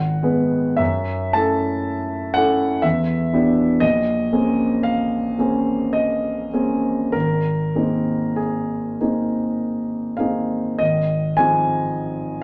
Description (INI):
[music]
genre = classical, impressionist solo piano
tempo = 47-62 BPM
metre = 3/4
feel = rubato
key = Ab major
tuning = A4 = 441 Hz
[part]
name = warm concert grand piano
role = solo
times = 0.0-12.4 s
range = Ab1 to A5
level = -20 LUFS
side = equal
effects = none
[sound]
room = wet large studio reverb, RT60 0.9 s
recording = none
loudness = -20 LUFS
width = mono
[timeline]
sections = 0.0-10.8 A section; 10.8-12.4 A section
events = none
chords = 0.0 Abm7; 0.8 Gbm7; 2.8 Em7; 3.8 Bbm11; 7.1 Abadd9; 10.8 Ab6